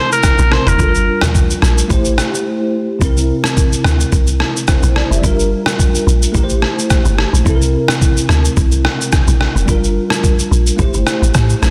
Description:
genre	afrobeats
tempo	108 BPM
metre	4/4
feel	swing 55% on 16ths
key	unclear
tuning	A4 = 440 Hz
part	clear trumpet	melody	0.0-1.2 s	Bb4 to C5	-18 LUFS	equal	digital delay
part	bell-like tine electric piano	accompaniment	0.0-11.7 s	C3 to E5	-21 LUFS	equal	ensemble chorus
part	trip hop sampler-style drum kit	drums	0.1-11.7 s	kick drum, rim click, shaker, toms	-17 LUFS	equal	soft clipping on snare
part	deep log drum bass	bass	0.4-11.7 s	F1 to A2	-16 LUFS	equal	none
room	light reverb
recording	dense, heavily limited modern master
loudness	-14 LUFS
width	mono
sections	0.0-3.0 A section; 3.0-11.7 B section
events	break 2.5-3.0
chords	0.0 C7; 0.8 Gm7; 1.9 Am7; 3.0 C7; 5.2 Gm7; 6.3 Am7; 7.5 C7; 9.7 Gm7; 10.8 Am7

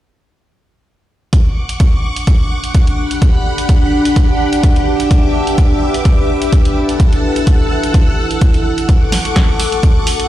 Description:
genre	piano house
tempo	127 BPM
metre	4/4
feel	swing 54% on 16ths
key	D major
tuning	A4 = 440 Hz
part	string machine, violins	sustained chords	1.3-10.3 s	G4 to E6	-22 LUFS	equal	ensemble chorus, sidechain pumping
part	electronic kick drum	drums	1.3-9.9 s	none	-11 LUFS	equal	none
part	punchy analog drum machine	drums	1.3-10.3 s	hi-hat, snare drum	-22 LUFS	right 1 dB	none
part	deep dark ambient pad	texture	2.5-10.3 s	D4 to F#5	-18 LUFS	equal	chorus, built-in reverb, sidechain pumping
room	light reverb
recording	played on a big sound system in a bare room, stone room reverb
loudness	-11 LUFS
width	side -13 dB against mid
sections	1.3-10.3 A section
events	none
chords	1.3 Dmaj7; 3.0 Gmaj7; 4.9 Em7; 6.8 F#m7; 8.9 Dmaj7

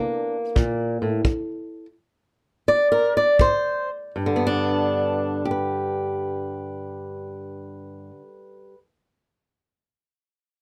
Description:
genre	acoustic country blues, solo or duo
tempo	78-90 BPM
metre	4/4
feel	swing 67% on 8ths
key	unclear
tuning	A4 = 439 Hz
part	fingerpicked swing-style acoustic guitar	melody	0.0-8.8 s	G2 to D5	-24 LUFS	equal	slapback echo
part	kick drum	drums	0.6-3.6 s	none	-23 LUFS	equal	none
room	light reverb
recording	close, detailed microphones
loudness	-23 LUFS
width	mono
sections	0.0-4.2 A section; 4.2-7.2 B section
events	slowing down 0.0-4.2; steel-string acoustic guitar solo 0.0-4.2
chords	0.0 Bbsus2; 1.2 N.C.; 4.2 G

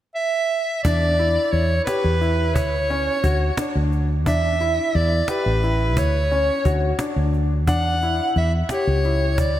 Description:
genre	progressive instrumental, band music in an uneven meter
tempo	176 BPM (eighths)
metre	5/8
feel	straight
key	E dorian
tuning	A4 = 440 Hz
part	bright soprano saxophone	melody	0.2-9.6 s	B4 to F#5	-22 LUFS	right 1 dB	tape echo
part	woody fretless electric bass	bass	0.8-9.6 s	A1 to E2	-20 LUFS	equal	none
part	cajon	drums	0.8-9.5 s	none	-28 LUFS	equal	none
part	clear grand piano	arpeggios	0.9-9.5 s	C#4 to G4	-26 LUFS	left 2 dB	tape echo
room	moderate lush hall reverb, RT60 2.6 s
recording	dreamy mix soaked in reverb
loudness	-18 LUFS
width	side -12 dB against mid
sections	0.8-9.6 A section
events	none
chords	0.0 N.C.; 0.8 Em7; 2.6 Dmaj7; 4.3 Em7; 6.0 Dmaj7; 7.7 Em7

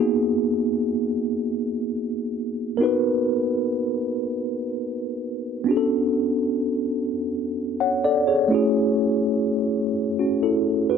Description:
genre	R&B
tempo	42 BPM (dotted quarters)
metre	6/8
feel	straight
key	unclear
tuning	A4 = 440 Hz
part	mellow tine electric piano	solo	0.0-11.0 s	A3 to F#5	-21 LUFS	equal	medium stereo tremolo
room	light reverb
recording	none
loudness	-21 LUFS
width	side -6 dB against mid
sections	0.0-11.0 A section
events	none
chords	0.0 G#m9; 5.7 Bm9; 8.5 F#m9

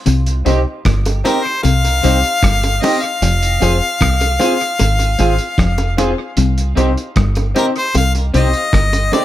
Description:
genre	roots reggae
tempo	76 BPM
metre	4/4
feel	straight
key	C minor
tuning	A4 = 440 Hz
part	clean electric guitar	riff	0.1-9.0 s	F2 to C3	-20 LUFS	left 6 dB	none
part	deep dub fingered electric bass	bass	0.1-9.1 s	F1 to C2	-15 LUFS	equal	none
part	cloth-damped thuddy drum kit	drums	0.1-9.2 s	hi-hat, kick drum, rim click	-21 LUFS	right 1 dB	tape echo
part	warm concert grand piano	stabs	0.4-9.2 s	C4 to C5	-22 LUFS	left 5 dB	none
part	clean electric guitar	accompaniment	0.5-9.2 s	C4 to Ab4	-23 LUFS	right 6 dB	lush chorus, tape echo
part	bongos	percussion	0.5-9.2 s	none	-23 LUFS	right 2 dB	none
part	clear harmonica	melody	1.3-9.2 s	Bb4 to F5	-18 LUFS	left 2 dB	tape echo
room	light reverb, small room ambience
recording	none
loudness	-12 LUFS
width	side -13 dB against mid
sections	0.0-9.2 A section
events	none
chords	0.1 Cm; 3.2 Fm; 6.4 Cm

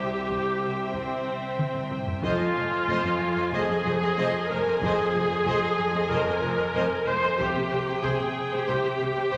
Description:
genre	cinematic, suspense film score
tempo	93 BPM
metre	4/4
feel	straight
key	F minor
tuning	A4 = 441 Hz
part	rich symphonic violin section	melody	0.0-9.4 s	G5 to Ab5	-39 LUFS	equal	none
part	clear symphonic violin section	second line	0.0-9.4 s	C5 to E5	-34 LUFS	equal	none
part	rich chamber viola section	accompaniment	0.0-9.4 s	C4 to C5	-29 LUFS	equal	none
part	concert harp	riff	0.0-9.4 s	F2 to C3	-35 LUFS	equal	none
part	clear symphonic double bass section	bass	0.0-9.4 s	F1 to C2	-40 LUFS	equal	none
part	rich symphonic cello section	bass	0.0-9.4 s	C2 to C3	-39 LUFS	equal	none
part	taiko ensemble	drums	0.3-9.3 s	none	-38 LUFS	equal	none
room	wet scoring stage reverb, RT60 1.9 s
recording	none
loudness	-26 LUFS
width	mono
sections	0.0-9.4 A section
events	drum fill 1.6-2.2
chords	0.0 C; 2.2 Fm7; 7.4 C5

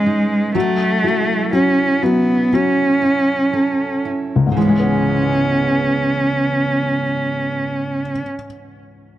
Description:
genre	pop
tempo	57-63 BPM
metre	4/4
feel	straight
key	C# minor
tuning	A4 = 440 Hz
part	rich cello	melody	0.0-8.2 s	G#3 to C#4	-17 LUFS	right 1 dB	none
part	felt-muted upright piano	accompaniment	0.0-9.2 s	C#2 to B3	-21 LUFS	left 5 dB	none
part	fingerpicked steel-string acoustic guitar	arpeggios	0.0-8.4 s	C#3 to A4	-22 LUFS	right 5 dB	none
room	light reverb, studio ambience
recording	dry, close 1970s-style studio recording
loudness	-15 LUFS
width	side -13 dB against mid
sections	0.0-4.6 A section; 4.6-8.8 B section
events	slowing down 0.0-4.6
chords	0.0 C#madd9/E; 0.6 F#m7; 4.6 C#m7

